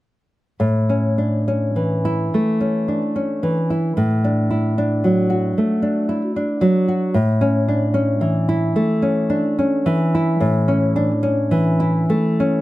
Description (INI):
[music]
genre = romantic piece for solo classical guitar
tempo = 66-77 BPM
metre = 4/4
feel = rubato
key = A major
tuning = A4 = 440 Hz
[part]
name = nylon-string guitar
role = solo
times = 0.6-12.6 s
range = A2 to F#4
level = -16 LUFS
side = equal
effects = none
[sound]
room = little or no reverb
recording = close, detailed microphones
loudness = -16 LUFS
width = side -16 dB against mid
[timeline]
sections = 0.6-12.6 A section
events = none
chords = 0.6 A; 4.0 D/A; 7.1 A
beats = | 0.60 1.47 2.32 3.15 | 3.97 4.78 5.56 6.34 | 7.14 7.95 8.76 9.57 | 10.41 11.24 12.10